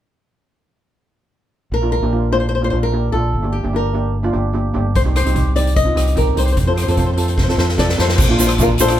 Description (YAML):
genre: calypso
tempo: 148 BPM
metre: 4/4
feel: straight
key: Bb major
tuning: A4 = 440 Hz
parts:
  - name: flamenco guitar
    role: melody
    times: 1.7-9.0 s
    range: F4 to Eb5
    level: -20 LUFS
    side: left 3 dB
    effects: none
  - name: fingered electric bass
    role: bass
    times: 1.7-9.0 s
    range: G1 to F2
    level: -18 LUFS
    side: equal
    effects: none
  - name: steel pan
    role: accompaniment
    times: 1.8-9.0 s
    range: Bb3 to A4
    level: -21 LUFS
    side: right 2 dB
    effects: none
  - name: street-band drum kit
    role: drums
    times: 5.0-9.0 s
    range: crash cymbal, hi-hat, kick drum, rim click, snare drum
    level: -19 LUFS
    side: equal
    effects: none
  - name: egg shaker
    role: percussion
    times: 8.2-9.0 s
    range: none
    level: -24 LUFS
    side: right 7 dB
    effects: none
room: light reverb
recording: band playing live in one room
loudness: -14 LUFS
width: side -12 dB against mid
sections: 1.7-8.2 A section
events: drum fill 7.4-8.2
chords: 1.7 Bb; 3.3 Gm; 5.0 Cm; 6.6 F; 8.2 Bbadd9